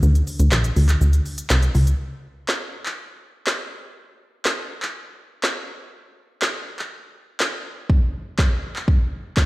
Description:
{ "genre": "dance-pop", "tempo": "122 BPM", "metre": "4/4", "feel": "straight", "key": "unclear", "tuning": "A4 = 440 Hz", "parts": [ { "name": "plucky analog bass", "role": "bass", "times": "0.0-1.9 s", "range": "Bb1 to D2", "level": "-15 LUFS", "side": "equal", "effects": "sidechain pumping" }, { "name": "deep house drum kit", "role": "drums", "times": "0.0-9.5 s", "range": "handclaps, hi-hat, kick drum, shaker, snare drum", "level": "-22 LUFS", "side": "equal", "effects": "none" } ], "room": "digital ambience", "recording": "played on a big sound system in a bare room, stone room reverb", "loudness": "-19 LUFS", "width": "side -20 dB against mid", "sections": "0.0-2.0 A section; 2.0-9.5 B section", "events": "drop 0.0-2.0; break 0.0-2.0", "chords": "none" }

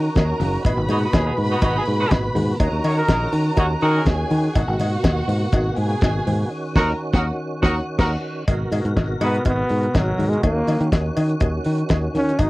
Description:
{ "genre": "disco", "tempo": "123 BPM", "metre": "4/4", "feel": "straight", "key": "G# minor", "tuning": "A4 = 441 Hz", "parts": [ { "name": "warm studio violin section", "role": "second line", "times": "0.0-8.2 s", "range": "F#4 to B5", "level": "-27 LUFS", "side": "right 1 dB", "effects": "cassette tape" }, { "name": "tonewheel organ", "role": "sustained chords", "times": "0.0-12.5 s", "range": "A#2 to A#4", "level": "-28 LUFS", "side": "equal", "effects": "overdrive, chorus vibrato, slow rotary speaker, cassette tape" }, { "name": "fingered electric bass", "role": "bass", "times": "0.0-12.5 s", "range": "F#1 to D#3", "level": "-22 LUFS", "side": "equal", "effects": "none" }, { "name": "damped 70s drum kit", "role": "drums", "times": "0.2-12.5 s", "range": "crash cymbal, hi-hat, kick drum, snare drum", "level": "-19 LUFS", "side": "equal", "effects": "cassette tape" }, { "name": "congas", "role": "percussion", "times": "0.2-12.3 s", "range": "none", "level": "-30 LUFS", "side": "left 2 dB", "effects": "none" }, { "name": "cowbell", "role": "percussion", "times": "0.2-12.5 s", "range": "none", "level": "-30 LUFS", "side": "left 2 dB", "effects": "none" }, { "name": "clear horn section", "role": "stabs", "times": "0.9-9.4 s", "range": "B3 to C#5", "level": "-23 LUFS", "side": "equal", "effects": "cassette tape" }, { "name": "clear trombone", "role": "melody", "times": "9.2-12.5 s", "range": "F#3 to D#4", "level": "-22 LUFS", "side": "equal", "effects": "none" } ], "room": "little or no reverb", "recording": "home recording on cassette", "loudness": "-18 LUFS", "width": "side -20 dB against mid", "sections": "0.0-8.5 A section; 8.5-12.5 B section", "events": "band accent 6.5-8.5; trombone solo 8.5-12.5", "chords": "0.0 D#m7; 0.6 G#m9; 2.6 D#m7; 4.6 G#m9; 6.5 D#m7; 8.5 G#m9; 10.4 D#m7" }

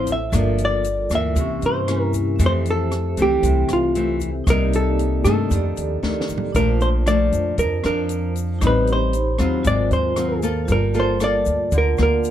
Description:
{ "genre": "bossa nova", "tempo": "116 BPM", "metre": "4/4", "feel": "straight", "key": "F major, Bb major from 6.5 s", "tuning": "A4 = 440 Hz", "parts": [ { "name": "vintage hollow-body jazz guitar", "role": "melody", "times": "0.0-12.3 s", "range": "F4 to E5", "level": "-22 LUFS", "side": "right 1 dB", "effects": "plate reverb" }, { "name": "nylon-string guitar", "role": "accompaniment", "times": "0.0-12.3 s", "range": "F2 to A4", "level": "-24 LUFS", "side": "left 4 dB", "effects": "none" }, { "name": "vibraphone with medium hard mallets", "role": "accompaniment", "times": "0.0-12.3 s", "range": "Bb3 to Cb6", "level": "-29 LUFS", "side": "right 5 dB", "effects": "none" }, { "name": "upright bass", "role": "bass", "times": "0.0-12.3 s", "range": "G1 to G2", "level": "-22 LUFS", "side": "equal", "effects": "none" }, { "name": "compact cocktail drum kit", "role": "drums", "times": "0.1-12.3 s", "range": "hi-hat, kick drum, rim click, snare drum, toms", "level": "-27 LUFS", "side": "equal", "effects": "none" }, { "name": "egg shaker", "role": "percussion", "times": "0.1-12.3 s", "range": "none", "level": "-40 LUFS", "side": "left 12 dB", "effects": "none" } ], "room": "light reverb", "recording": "dark, warm production", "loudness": "-17 LUFS", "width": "side -11 dB against mid", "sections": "0.0-6.5 A section; 6.5-12.3 B section", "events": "drum fill 6.0-6.5", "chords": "0.3 Gm7; 1.4 C7b9; 2.4 Fmaj7; 4.5 Cm7; 5.5 F13; 6.5 Bbmaj7; 8.6 Am7b5; 9.7 Ab13; 10.7 Gm9" }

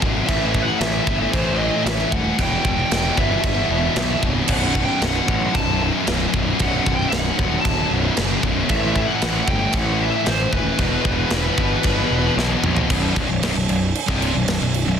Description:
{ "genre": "heavy metal", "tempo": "114 BPM", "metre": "4/4", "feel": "straight", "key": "unclear", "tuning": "A4 = 439 Hz", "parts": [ { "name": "cranked stack guitar", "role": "riff", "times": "0.0-15.0 s", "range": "B1 to A3", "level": "-26 LUFS", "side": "left 1 dB", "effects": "overdrive" }, { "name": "high-gain distorted guitar", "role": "riff", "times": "0.0-15.0 s", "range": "B1 to E3", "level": "-24 LUFS", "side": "left 10 dB", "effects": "distortion" }, { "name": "scooped high-gain guitar", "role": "riff", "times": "0.0-15.0 s", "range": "B1 to E3", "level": "-26 LUFS", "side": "right 11 dB", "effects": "distortion" }, { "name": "fuzz picked electric bass", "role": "bass", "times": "0.0-15.0 s", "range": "B0 to B1", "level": "-23 LUFS", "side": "equal", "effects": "overdrive" }, { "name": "tight metal drum kit", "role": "drums", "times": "0.0-14.9 s", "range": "china cymbal, crash cymbal, kick drum, snare drum, toms", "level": "-24 LUFS", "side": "right 1 dB", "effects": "soft clipping on kick" }, { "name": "high-gain lead guitar", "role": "melody", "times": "0.3-12.3 s", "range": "B4 to A5", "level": "-24 LUFS", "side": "equal", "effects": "distortion" } ], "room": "small room ambience", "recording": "dense, heavily limited modern master", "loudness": "-17 LUFS", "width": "side -8 dB against mid", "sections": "0.0-12.9 A section; 12.9-15.0 B section", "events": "drum fill 12.4-12.9", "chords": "0.3 A5; 2.4 Em; 4.5 B5; 8.7 A5; 10.8 Em; 12.9 B5" }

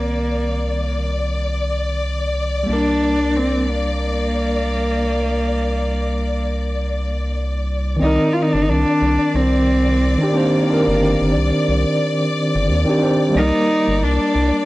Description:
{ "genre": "trip hop", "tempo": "90 BPM", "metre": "4/4", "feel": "swing 58% on 16ths", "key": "C minor", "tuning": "A4 = 440 Hz", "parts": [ { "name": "dark cello", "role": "melody", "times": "0.0-14.7 s", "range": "Bb3 to F4", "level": "-20 LUFS", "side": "equal", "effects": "tape echo" }, { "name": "tine electric piano", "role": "accompaniment", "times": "0.0-14.7 s", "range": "Eb3 to D5", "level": "-21 LUFS", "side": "equal", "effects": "medium tremolo, tape echo" }, { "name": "clear symphonic string section", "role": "sustained chords", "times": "0.0-14.7 s", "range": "D5", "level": "-25 LUFS", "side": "left 2 dB", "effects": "none" }, { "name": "round analog bass", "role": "bass", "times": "0.0-14.5 s", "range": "G1 to Eb2", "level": "-21 LUFS", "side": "equal", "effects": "tube saturation" } ], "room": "studio reverb", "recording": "dry, gritty hardware recording, vinyl crackle", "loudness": "-16 LUFS", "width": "side -18 dB against mid", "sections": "0.0-8.0 A section; 8.0-14.7 B section", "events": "none", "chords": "0.0 Cm9; 2.7 Gm/C; 8.0 Cm9; 13.3 Gm" }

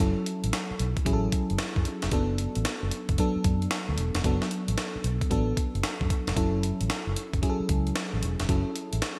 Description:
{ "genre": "R&B, new jack swing", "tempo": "113 BPM", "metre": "4/4", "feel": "swing 65% on 16ths", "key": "F# minor", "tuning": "A4 = 440 Hz", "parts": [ { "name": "FM electric piano with soft pad layer", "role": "accompaniment", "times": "0.0-9.2 s", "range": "F#3 to A4", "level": "-32 LUFS", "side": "equal", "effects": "chorus" }, { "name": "vintage muted fingered electric bass", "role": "bass", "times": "0.0-9.0 s", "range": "E1 to F#2", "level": "-31 LUFS", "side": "equal", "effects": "none" }, { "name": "breakbeat sampler-style drum kit", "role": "drums", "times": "0.0-9.2 s", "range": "hi-hat, kick drum, snare drum", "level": "-32 LUFS", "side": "equal", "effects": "gated reverb" } ], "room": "moderate lush hall reverb, RT60 2.5 s", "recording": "bright 1980s-style digital production", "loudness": "-28 LUFS", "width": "mono", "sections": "0.0-9.2 A section", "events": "none", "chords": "0.0 F#m7; 2.1 Bm7; 6.4 F#m7" }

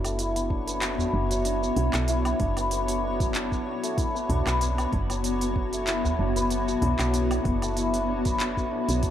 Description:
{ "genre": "organic downtempo", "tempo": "95 BPM", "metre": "4/4", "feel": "swing 55% on 16ths", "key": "B minor", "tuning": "A4 = 440 Hz", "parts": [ { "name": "granular cloud pad", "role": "sustained chords", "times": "0.1-9.1 s", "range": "B3 to C#5", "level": "-30 LUFS", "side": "left 1 dB", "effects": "built-in reverb, sidechain pumping" }, { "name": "santur", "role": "arpeggios", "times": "0.0-9.1 s", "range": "F#3 to B4", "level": "-28 LUFS", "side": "left 1 dB", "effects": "low-pass filter, analog delay" }, { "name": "woody FM bass", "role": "bass", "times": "0.0-9.1 s", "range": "F#1 to B1", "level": "-29 LUFS", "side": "right 1 dB", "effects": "none" }, { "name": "organic electronic drum kit", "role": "drums", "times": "0.0-9.1 s", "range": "handclaps, hi-hat, shaker, woodblock", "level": "-33 LUFS", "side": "right 1 dB", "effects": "small room reverb" }, { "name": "electronic kick drum", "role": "drums", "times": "0.5-9.1 s", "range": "none", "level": "-29 LUFS", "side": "right 1 dB", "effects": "small room reverb" }, { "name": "udu", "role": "percussion", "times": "1.0-7.0 s", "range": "none", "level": "-32 LUFS", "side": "equal", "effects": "tape echo" } ], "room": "moderate spring reverb, RT60 2.8 s", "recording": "echo-heavy mix", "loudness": "-23 LUFS", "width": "side -10 dB against mid", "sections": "0.0-9.1 A section", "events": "filter sweep on santur 0.0-9.1", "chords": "0.0 Bmadd9" }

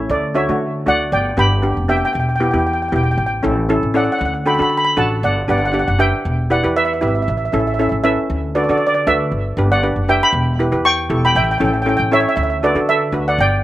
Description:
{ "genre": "calypso", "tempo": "117 BPM", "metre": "4/4", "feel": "straight", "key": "D major", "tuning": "A4 = 438 Hz", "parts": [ { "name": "steel pan", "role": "melody", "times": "0.0-13.5 s", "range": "A4 to C#6", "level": "-17 LUFS", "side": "right 1 dB", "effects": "slapback echo" }, { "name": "steel pan", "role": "accompaniment", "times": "0.0-13.4 s", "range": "A3 to D5", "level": "-20 LUFS", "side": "equal", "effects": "slapback echo" }, { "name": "upright bass", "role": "bass", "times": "0.0-13.6 s", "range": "E1 to D3", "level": "-20 LUFS", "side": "equal", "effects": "none" } ], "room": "little or no reverb", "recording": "recorded outdoors, with no room sound", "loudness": "-14 LUFS", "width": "side -14 dB against mid", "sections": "0.1-13.6 A section", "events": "none", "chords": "0.1 D; 1.1 G; 2.2 Em; 3.2 A; 4.2 D; 5.2 Gmaj7; 6.2 Em7; 7.3 A; 8.3 D; 9.3 Gmaj7; 10.3 Em; 11.4 A; 12.4 D" }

